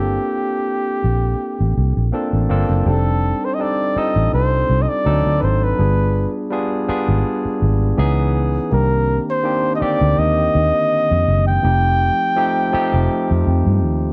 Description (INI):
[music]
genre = lush 1970s-style soul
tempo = 82 BPM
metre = 4/4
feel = swing 54% on 16ths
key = unclear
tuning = A4 = 440 Hz
[part]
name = mellow flugelhorn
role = melody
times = 0.0-13.8 s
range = G4 to G5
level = -22 LUFS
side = equal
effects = none
[part]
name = barky tine electric piano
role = accompaniment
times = 0.0-14.1 s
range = D3 to A4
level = -24 LUFS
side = equal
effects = overdrive
[part]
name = vintage muted fingered electric bass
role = bass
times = 0.0-14.1 s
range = F1 to G2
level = -19 LUFS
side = equal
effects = none
[sound]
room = light reverb, small room ambience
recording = dark, warm production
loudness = -18 LUFS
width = mono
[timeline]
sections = 0.0-2.9 A section; 2.9-14.1 B section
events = none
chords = 0.0 Gm11; 2.9 F13; 5.1 D7b9; 5.8 G7b9; 8.0 C#m7; 8.7 Cm7; 11.6 F9